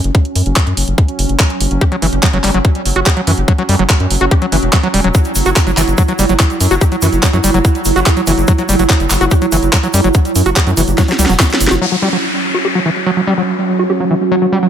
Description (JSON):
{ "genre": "psychedelic trance", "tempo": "144 BPM", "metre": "4/4", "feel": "straight", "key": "unclear", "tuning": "A4 = 439 Hz", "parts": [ { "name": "pulsing gated texture", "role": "sustained chords", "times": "0.0-14.7 s", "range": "F#3 to E4", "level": "-18 LUFS", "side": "right 2 dB", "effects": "chorus, built-in reverb, sidechain pumping" }, { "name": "round analog bass", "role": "bass", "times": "0.0-11.8 s", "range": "E1 to F#2", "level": "-15 LUFS", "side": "equal", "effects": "none" }, { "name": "garage drum kit", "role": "drums", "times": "0.0-11.8 s", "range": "handclaps, hi-hat, snare drum", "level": "-17 LUFS", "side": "equal", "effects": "overdrive, low-pass filter on hats, small room ambience, low-pass filter on snare, low-pass filter on cymbals" }, { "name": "electronic kick drum", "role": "drums", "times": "0.1-11.5 s", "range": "none", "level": "-11 LUFS", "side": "equal", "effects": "overdrive, small room ambience" }, { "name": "screaming distorted acid line", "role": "riff", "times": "1.8-14.7 s", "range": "E3 to G4", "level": "-16 LUFS", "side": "moving between left 3 dB and right 3 dB", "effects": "distortion, chorus, auto-pan, sidechain pumping, digital delay" }, { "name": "tube shaker", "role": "percussion", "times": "5.1-11.8 s", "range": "none", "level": "-24 LUFS", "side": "right 1 dB", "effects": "none" }, { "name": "downlifter", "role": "sound effects", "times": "11.8-14.7 s", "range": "none", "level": "-20 LUFS", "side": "left 3 dB", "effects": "none" }, { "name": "warbly tape-like pad", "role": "texture", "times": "11.8-14.7 s", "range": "F#4 to F#5", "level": "-21 LUFS", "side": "right 4 dB", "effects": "chorus, built-in reverb, sidechain pumping" } ], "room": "light reverb, digital ambience", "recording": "none", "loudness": "-10 LUFS", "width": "side -9 dB against mid", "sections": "0.0-11.8 A section; 11.8-14.7 B section", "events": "drum fill 11.0-11.8", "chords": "0.0 F#5" }